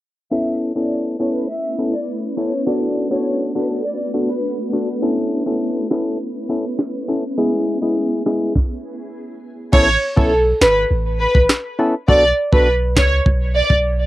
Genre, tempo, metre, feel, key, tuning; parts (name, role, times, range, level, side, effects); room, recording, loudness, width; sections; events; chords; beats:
dancehall; 102 BPM; 4/4; straight; A major; A4 = 440 Hz
warm symphonic violin section; melody; 0.3-4.4, 9.7-13.7 s; A4 to E5; -18 LUFS; right 1 dB; cassette tape, tape echo
percussive organ stab; accompaniment; 0.3-12.7 s; G#3 to A4; -19 LUFS; left 1 dB; chorus, sidechain pumping, cassette tape
granular cloud pad; sustained chords; 1.0-8.5 s; A3 to B4; -24 LUFS; right 1 dB; built-in reverb, sidechain pumping, cassette tape
afro-pop drum kit; drums; 5.9-13.8 s; crash cymbal, kick drum, rim click, snare drum; -16 LUFS; equal; cassette tape
punchy sub bass; bass; 9.7-14.1 s; G#1 to C#2; -19 LUFS; equal
light reverb; home recording on cassette, low-pass filter; -16 LUFS; side -16 dB against mid
0.3-9.7 A section; 9.7-14.1 B section
filter sweep 0.3-9.7; stop 8.6-9.7; hi-hats muted 9.7-14.1
0.3 Aadd9; 2.7 Bm7; 5.0 Aadd9; 7.4 E; 9.7 Aadd9; 12.1 Bm7
| 0.32 0.91 1.50 2.08 | 2.67 3.26 3.85 4.44 | 5.03 5.61 6.20 6.79 | 7.38 7.97 8.55 9.14 | 9.73 10.32 10.91 11.49 | 12.08 12.67 13.26 13.85